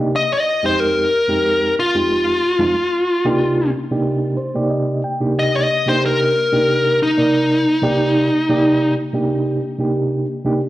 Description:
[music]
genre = blues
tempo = 92 BPM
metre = 4/4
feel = swing 54% on 16ths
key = C minor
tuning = A4 = 441 Hz
[part]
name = mellow reed electric piano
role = accompaniment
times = 0.0-10.6 s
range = F2 to G5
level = -19 LUFS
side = right 1 dB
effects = fast tremolo, slapback echo
[part]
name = dark smooth lead guitar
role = melody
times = 0.2-8.9 s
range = Eb4 to Eb5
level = -16 LUFS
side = left 1 dB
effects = overdrive, slapback echo
[sound]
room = moderate lush hall reverb, RT60 2.9 s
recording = live gig heard through the venue's PA, club reverb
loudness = -15 LUFS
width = side -15 dB against mid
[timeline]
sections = 0.0-10.7 A section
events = reed electric piano fill 4.1-5.4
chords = 0.1 Fm7; 2.7 Cm7

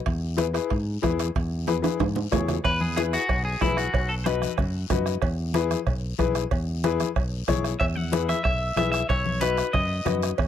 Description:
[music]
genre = latin, cumbia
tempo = 186 BPM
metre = 4/4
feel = straight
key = E major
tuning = A4 = 441 Hz
[part]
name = fingered electric bass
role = bass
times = 0.1-10.5 s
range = B1 to G#2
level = -28 LUFS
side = equal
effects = none
[part]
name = bombo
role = percussion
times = 0.1-10.5 s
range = none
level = -28 LUFS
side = right 2 dB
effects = none
[part]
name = congas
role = percussion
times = 0.1-10.5 s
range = none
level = -32 LUFS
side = left 4 dB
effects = none
[part]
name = guiro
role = percussion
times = 0.1-10.5 s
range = none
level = -40 LUFS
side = left 19 dB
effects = none
[part]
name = timbales and cowbell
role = percussion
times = 0.1-10.5 s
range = none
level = -32 LUFS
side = right 9 dB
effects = none
[part]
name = clear upright piano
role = accompaniment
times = 0.4-10.3 s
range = D#4 to C#5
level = -27 LUFS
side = left 10 dB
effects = none
[part]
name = clean electric guitar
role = melody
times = 2.6-4.6, 7.8-10.2 s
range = E4 to F#5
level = -27 LUFS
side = left 1 dB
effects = spring reverb
[sound]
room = little or no reverb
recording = dry, close 1970s-style studio recording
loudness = -22 LUFS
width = side -10 dB against mid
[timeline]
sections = 0.0-2.6 A section; 2.6-10.5 B section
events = drum fill 1.7-2.6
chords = 0.1 E; 3.9 B; 5.2 E; 9.1 B

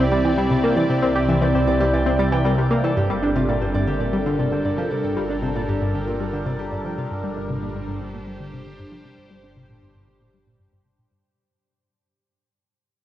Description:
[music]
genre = ambient, sequencer-driven space music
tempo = 116 BPM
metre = 4/4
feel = straight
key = G dorian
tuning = A4 = 440 Hz
[part]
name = phased analog pad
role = sustained chords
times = 0.0-11.2 s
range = C3 to E5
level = -25 LUFS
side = equal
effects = phaser, chorus
[part]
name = concert harp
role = arpeggios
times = 0.0-9.5 s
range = E4 to G5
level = -25 LUFS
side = right 1 dB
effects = auto-pan, ping-pong delay
[part]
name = tight sequenced synth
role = riff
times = 0.0-11.2 s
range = G2 to G4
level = -23 LUFS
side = left 1 dB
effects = chorus, ping-pong delay
[part]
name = fat analog bass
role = bass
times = 0.0-11.2 s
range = G1 to C2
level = -29 LUFS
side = equal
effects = transformer saturation
[sound]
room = wet huge ambient reverb, RT60 7.4 s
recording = worn, warbling old tape, cassette tape, warbly pitch drift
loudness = -19 LUFS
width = side -13 dB against mid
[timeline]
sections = 0.0-3.0 A section; 3.0-11.2 B section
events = fade-out 3.0-11.2; filter sweep on synth arpeggio sound 3.0-11.2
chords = 0.0 Cadd9; 3.0 Gmadd9

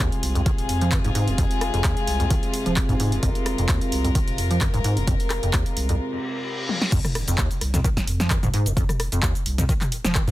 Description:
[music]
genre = acid house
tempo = 130 BPM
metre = 4/4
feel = swing 54% on 16ths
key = F minor pentatonic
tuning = A4 = 440 Hz
[part]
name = rich chamber string section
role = sustained chords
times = 0.0-6.9 s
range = C3 to Bb4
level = -28 LUFS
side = left 1 dB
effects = sidechain pumping
[part]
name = acid bass, square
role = riff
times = 0.0-10.3 s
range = Eb2 to F3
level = -25 LUFS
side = equal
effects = tube saturation, ensemble chorus, sidechain pumping
[part]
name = electronic kick drum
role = drums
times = 0.0-10.3 s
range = none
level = -24 LUFS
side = equal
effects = overdrive, small room ambience
[part]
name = punchy analog drum machine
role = drums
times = 0.0-10.3 s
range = crash cymbal, handclaps, hi-hat, rim click, shaker, snare drum, toms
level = -27 LUFS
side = equal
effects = overdrive, small room ambience
[part]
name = saturated sub bass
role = bass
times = 0.2-10.3 s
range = Eb1 to F2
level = -27 LUFS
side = equal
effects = sidechain pumping
[part]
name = reverse cymbal and impact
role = sound effects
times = 6.1-8.8 s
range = none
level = -32 LUFS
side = left 1 dB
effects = none
[sound]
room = light reverb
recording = dense, heavily limited modern master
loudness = -20 LUFS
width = side -16 dB against mid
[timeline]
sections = 0.0-6.9 A section; 6.9-10.3 B section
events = filter sweep on acid bass 0.0-6.9; break 6.0-6.9; reverse cymbal 6.1-6.9; drum fill 6.7; drop 6.9-10.3; impact 6.9-8.8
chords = 0.0 Fm; 6.9 F5

